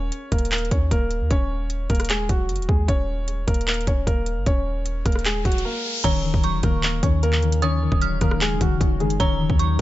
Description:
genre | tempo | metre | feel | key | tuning
hip hop, trap | 152 BPM | 4/4 | half-time | Eb minor | A4 = 440 Hz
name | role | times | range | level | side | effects
dark grand piano | melody | 0.0-9.8 s | Gb3 to Db5 | -27 LUFS | equal | tape echo
warm 808-style bass | bass | 0.0-9.8 s | Eb1 to Eb2 | -24 LUFS | equal | none
trap drum kit | drums | 0.1-9.8 s | crash cymbal, handclaps, hi-hat, kick drum, rim click | -22 LUFS | equal | none
riser | sound effects | 5.4-6.0 s | none | -31 LUFS | left 1 dB | none
dark detuned synth bell | second line | 6.0-9.8 s | Bb5 to F6 | -29 LUFS | right 6 dB | chorus, tape echo
concert harp | accompaniment | 6.0-9.8 s | Eb3 to Db4 | -25 LUFS | left 7 dB | none
granular cloud pad | sustained chords | 6.8-9.8 s | Db3 to Eb4 | -33 LUFS | left 2 dB | built-in reverb
room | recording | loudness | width
digital ambience | nothing above 7.8 kHz | -19 LUFS | side -15 dB against mid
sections
0.0-6.0 A section; 6.0-9.8 B section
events
riser 5.4-6.0; break 5.6-6.0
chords
0.0 Eb7(no3); 6.0 Ebm7

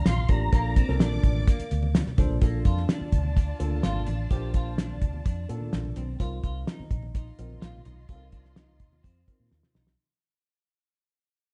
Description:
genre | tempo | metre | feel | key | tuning
uptempo 1960s-style soul | 127 BPM | 4/4 | straight | Bb major | A4 = 438 Hz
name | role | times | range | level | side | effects
tonewheel organ | melody | 0.0-1.0 s | Bb5 to C6 | -36 LUFS | equal | chorus vibrato, slow rotary speaker, plate reverb
warm studio violin section | second line | 0.0-9.9 s | F4 to F6 | -47 LUFS | equal | none
semi-hollow electric guitar | riff | 0.0-9.9 s | Bb3 to G4 | -42 LUFS | equal | lush chorus
vintage muted fingered electric bass | bass | 0.1-9.9 s | Ab1 to Bb2 | -31 LUFS | equal | none
cloth-damped thuddy drum kit | drums | 0.1-10.0 s | hi-hat, kick drum, snare drum | -26 LUFS | equal | none
congas | percussion | 0.1-9.9 s | none | -41 LUFS | equal | none
dark grand piano | accompaniment | 0.3-9.8 s | Bb3 to C5 | -38 LUFS | equal | none
room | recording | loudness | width
light reverb | dark, warm production, nothing above 10.5 kHz | -26 LUFS | mono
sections
0.0-2.4 A section; 2.4-10.0 B section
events
fade-out 2.4-10.0; drum fill 9.5-10.0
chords
0.0 Gm7; 0.5 Bbmaj7; 6.2 F7sus4

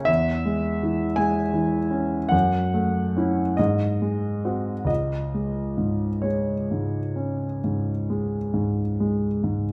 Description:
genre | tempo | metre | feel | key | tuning
classical, romantic nocturne for solo piano | 43-55 BPM | 4/4 | rubato | C# minor | A4 = 435 Hz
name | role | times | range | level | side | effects
warm concert grand piano | solo | 0.0-9.7 s | C#2 to G#5 | -24 LUFS | equal | none
room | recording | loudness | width
moderate recital hall reverb, RT60 1.5 s | none | -24 LUFS | mono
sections
0.0-9.7 A section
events
none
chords
0.1 C#m/E; 2.3 F#m7; 3.6 G#7; 4.9 C#5

